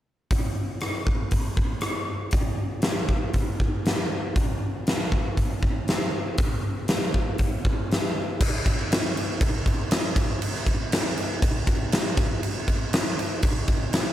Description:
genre	rock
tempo	119 BPM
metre	4/4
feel	straight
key	none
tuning	none
part	huge arena drum kit	drums	0.3-14.1 s	crash cymbal, hi-hat, kick drum, rim click, snare drum	-23 LUFS	equal	none
room	light reverb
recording	none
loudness	-23 LUFS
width	side -12 dB against mid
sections	0.3-8.4 A section; 8.4-14.1 B section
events	none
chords	none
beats	| 0.31 0.81 1.32 1.82 | 2.33 2.84 3.34 3.85 | 4.36 4.86 5.37 5.88 | 6.38 6.89 7.39 7.90 | 8.40 8.90 9.41 9.91 | 10.41 10.92 11.42 11.92 | 12.42 12.93 13.43 13.93

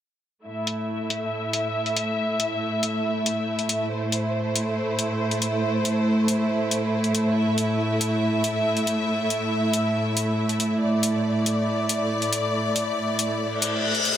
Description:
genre	heavy wobble dubstep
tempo	139 BPM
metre	4/4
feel	half-time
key	A minor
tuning	A4 = 440 Hz
part	clear symphonic string section	sustained chords	0.5-14.2 s	A2 to E5	-22 LUFS	equal	low-pass filter
part	electronic hi-hat	drums	0.7-14.1 s	none	-26 LUFS	left 2 dB	low-pass filter on hats
part	reverse cymbal	sound effects	13.6-14.2 s	none	-22 LUFS	left 4 dB	none
room	moderate lush hall reverb, RT60 2.4 s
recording	none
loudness	-22 LUFS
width	side -10 dB against mid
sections	0.5-14.2 A section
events	reverse cymbal 13.6-14.2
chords	0.5 A5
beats	| 0.46 0.89 1.32 1.75 | 2.18 2.61 3.04 3.48 | 3.91 4.34 4.77 5.20 | 5.63 6.07 6.50 6.93 | 7.36 7.79 8.22 8.66 | 9.09 9.52 9.95 10.38 | 10.81 11.25 11.68 12.11 | 12.54 12.97 13.40 13.84

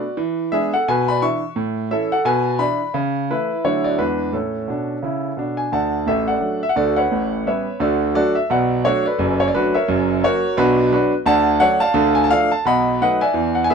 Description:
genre	jazz, stride piano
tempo	173 BPM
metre	4/4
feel	swing 59% on 8ths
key	A major, D major from 5.7 s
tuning	A4 = 442 Hz
part	clear concert grand piano	solo	0.0-13.7 s	F#1 to C#6	-16 LUFS	equal	none
room	light reverb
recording	close, detailed microphones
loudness	-16 LUFS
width	side -6 dB against mid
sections	0.0-5.7 A section; 5.7-13.7 B section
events	none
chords	0.2 E7; 0.9 E5/B; 1.6 A; 2.3 E7/B; 2.9 A/C#; 3.6 D; 4.0 E7; 4.3 A; 5.7 D; 7.1 A9; 7.8 D; 8.5 Bm7; 9.9 F#7; 10.6 Bm; 11.3 Dmaj7; 12.0 Dm; 12.6 B7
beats	| 0.17 0.52 0.87 1.21 | 1.56 1.91 2.25 2.60 | 2.95 3.29 3.64 3.99 | 4.34 4.68 5.03 5.38 | 5.72 6.07 6.42 6.76 | 7.11 7.46 7.80 8.15 | 8.49 8.84 9.19 9.53 | 9.88 10.22 10.57 10.91 | 11.26 11.61 11.95 12.30 | 12.64 12.99 13.34 13.68

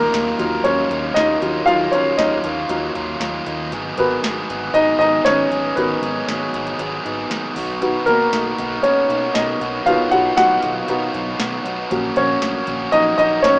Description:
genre	piano-driven pop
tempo	117 BPM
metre	4/4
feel	straight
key	Eb minor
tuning	A4 = 441 Hz
part	warm baby grand piano	accompaniment	0.0-13.6 s	Gb3 to F#5	-17 LUFS	equal	none
part	overdriven electric guitar	riff	0.0-13.6 s	Ab2 to Ab4	-23 LUFS	right 1 dB	none
part	chorused synth bass	bass	0.0-13.6 s	Ab1 to Eb2	-30 LUFS	equal	none
part	impact	sound effects	0.0-1.7 s	none	barely audible	none	none
part	booming analog drum machine	drums	0.1-13.6 s	hi-hat, kick drum, snare drum	-28 LUFS	equal	none
room	light reverb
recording	rough home demo mix, small speaker sound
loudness	-16 LUFS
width	side -26 dB against mid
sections	0.0-13.6 A section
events	impact 0.0-1.7; grand piano solo 0.0-13.6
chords	0.0 Ebmadd9; 3.7 Abm7; 7.6 B; 11.9 Gb/Bb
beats	0.14 0.65 1.16 | 1.67 2.19 2.70 3.21 | 3.72 4.23 4.75 5.26 | 5.77 6.28 6.79 7.30 | 7.82 8.33 8.84 9.35 | 9.86 10.38 10.89 11.40 | 11.91 12.42 12.93 13.45

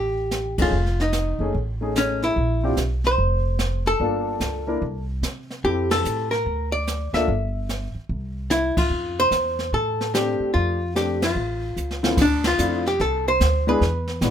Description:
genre	jazz, small-group swing and bop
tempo	147 BPM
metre	4/4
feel	swing 66% on 8ths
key	F major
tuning	A4 = 440 Hz
part	archtop guitar, miked and amplified	melody	0.0-14.3 s	C#4 to E5	-23 LUFS	left 1 dB	none
part	upright bass	bass	0.0-14.3 s	E1 to C3	-26 LUFS	right 1 dB	none
part	jazz brush drum kit	drums	0.3-14.3 s	brushed snare drum, crash cymbal, hi-hat, kick drum, ride cymbal, snare drum	-27 LUFS	right 1 dB	none
part	warm grand piano	accompaniment	0.6-7.3, 10.1-14.3 s	D3 to Bb4	-25 LUFS	left 2 dB	none
room	light reverb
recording	minimal, uncompressed stereo recording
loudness	-20 LUFS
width	side -9 dB against mid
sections	0.0-12.2 A section; 12.2-14.3 B section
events	band accent 0.5, 5.8, 8.7, 11.2, 12.4; drum fill 11.8-12.2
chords	0.0 Fadd9 (rootless); 0.7 F7alt; 2.4 Bbsus2; 4.0 Gm9; 4.8 N.C.; 5.6 Fmaj9; 6.5 Dm; 7.3 Em/G; 8.1 C; 8.9 F69; 11.4 A; 12.2 Dm9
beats	0.31 | 0.72 1.13 1.54 1.95 | 2.36 2.77 3.18 3.59 | 4.00 4.41 4.82 5.23 | 5.63 6.04 6.45 6.86 | 7.27 7.68 8.09 8.50 | 8.91 9.32 9.73 10.13 | 10.54 10.95 11.36 11.77 | 12.18 12.59 12.99 13.40 | 13.81 14.22

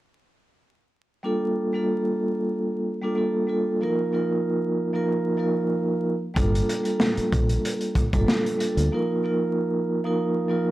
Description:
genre	hip hop, boom-bap hip-hop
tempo	94 BPM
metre	4/4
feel	swing 54% on 16ths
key	G minor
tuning	A4 = 440 Hz
part	vibraphone with soft mallets	accompaniment	1.2-10.7 s	F3 to Bb4	-23 LUFS	right 1 dB	high-pass filter, low-pass filter
part	deep dub fingered electric bass	bass	6.4-8.9 s	G1 to D2	-24 LUFS	equal	tube saturation
part	crunchy breakbeat drum kit	drums	6.4-8.9 s	hi-hat, kick drum, snare drum	-24 LUFS	equal	none
room	light reverb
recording	dry, gritty hardware recording, transformer saturation, vinyl crackle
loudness	-22 LUFS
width	side -16 dB against mid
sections	1.3-10.7 A section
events	none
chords	1.3 Gm7; 3.8 Ebsus2; 6.4 Gm7; 8.9 Ebsus2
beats	| 1.26 1.90 2.53 3.17 | 3.81 4.45 5.09 5.72 | 6.36 7.00 7.64 8.28 | 8.92 9.55 10.19

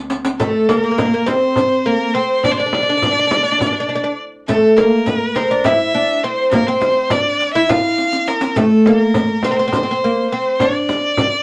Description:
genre	Turkish makam ensemble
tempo	206 BPM (eighths)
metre	7/8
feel	straight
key	D makam nihavent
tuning	A4 = 438 Hz
part	rich cello	drone	0.0-0.5 s	D2	-41 LUFS	equal	none
part	riq	percussion	0.1-11.3 s	none	-28 LUFS	equal	none
part	oud	melody	0.4-11.4 s	A3 to F4	-18 LUFS	equal	none
part	rich violin	second line	0.4-11.4 s	A4 to F5	-21 LUFS	equal	none
part	frame drum	percussion	0.4-11.3 s	none	-25 LUFS	equal	none
room	wet small room ambience, RT60 0.5 s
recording	none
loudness	-16 LUFS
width	mono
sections	0.4-11.4 A section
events	drum fill 0.0-0.4, 8.0-8.6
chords	none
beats	0.11 | 0.40 0.69 0.98 1.27 1.57 1.86 2.15 | 2.44 2.73 3.02 3.31 3.61 3.90 4.19 | 4.48 4.77 5.06 5.36 5.65 5.94 6.23 | 6.52 6.81 7.10 7.39 7.69 7.98 8.27 | 8.56 8.85 9.14 9.44 9.73 10.02 10.31 | 10.60 10.89 11.18

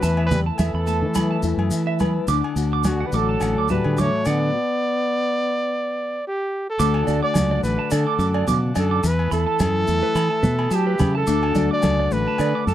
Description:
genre	highlife guitar band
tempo	107 BPM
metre	4/4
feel	swing 55% on 16ths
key	D major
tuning	A4 = 441 Hz
part	breathy trumpet	melody	0.0-12.7 s	F#4 to D5	-24 LUFS	right 1 dB	none
part	clear trombone	second line	0.0-6.2 s	D3 to B3	-28 LUFS	left 4 dB	none
part	nylon-string guitar	accompaniment	0.0-12.7 s	A2 to B4	-27 LUFS	left 9 dB	none
part	overdriven combo organ	sustained chords	0.0-12.7 s	B4 to A5	-38 LUFS	right 1 dB	none
part	clean electric guitar	arpeggios	0.0-12.7 s	B4 to D6	-27 LUFS	right 11 dB	wide subtle chorus, slapback echo
part	fingered electric bass	bass	0.0-12.7 s	A1 to F#3	-22 LUFS	equal	none
part	congas	percussion	0.0-12.7 s	none	-25 LUFS	right 1 dB	none
part	maracas	percussion	0.0-12.7 s	none	-37 LUFS	left 4 dB	none
part	agogo bells	percussion	0.2-12.5 s	none	-35 LUFS	left 5 dB	none
room	light reverb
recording	dry, close 1970s-style studio recording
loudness	-18 LUFS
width	side -12 dB against mid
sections	0.0-6.8 A section; 6.8-12.7 B section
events	stop 4.5-6.8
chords	0.0 Asus2/E; 2.3 D; 4.5 N.C.; 6.8 D; 9.0 Asus2/E; 11.3 D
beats	| 0.03 0.60 1.16 1.73 | 2.29 2.85 3.42 3.98 | 4.54 5.11 5.67 6.23 | 6.79 7.36 7.92 8.48 | 9.04 9.60 10.16 10.72 | 11.28 11.84 12.40

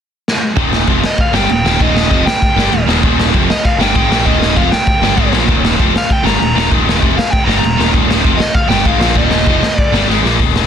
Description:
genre	punk rock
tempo	195 BPM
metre	4/4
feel	straight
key	Eb major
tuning	A4 = 440 Hz
part	raw garage drum kit	drums	0.3-10.6 s	crash cymbal, hi-hat, kick drum, snare drum	-14 LUFS	equal	none
part	biting overdriven guitar	riff	0.6-10.4 s	Eb2 to Bb3	-18 LUFS	right 16 dB	none
part	distorted electric guitar	riff	0.6-10.7 s	Eb2 to Bb3	-17 LUFS	left 17 dB	overdrive
part	modern bright picked electric bass	bass	0.6-10.7 s	Eb1 to Bb1	-18 LUFS	equal	none
part	dark smooth lead guitar	melody	1.1-10.1 s	Eb5 to Bb5	-18 LUFS	left 1 dB	overdrive, digital delay
room	little or no reverb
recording	dense, heavily limited modern master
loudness	-10 LUFS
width	side -8 dB against mid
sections	0.6-10.4 A section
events	drum fill 0.3-0.6, 10.1-10.4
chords	0.0 N.C.; 0.6 Eb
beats	0.26 | 0.56 0.87 1.18 1.49 | 1.79 2.10 2.41 2.71 | 3.02 3.33 3.63 3.94 | 4.25 4.55 4.86 5.17 | 5.48 5.78 6.09 6.40 | 6.70 7.01 7.32 7.62 | 7.93 8.24 8.55 8.85 | 9.16 9.47 9.78 10.09 | 10.39

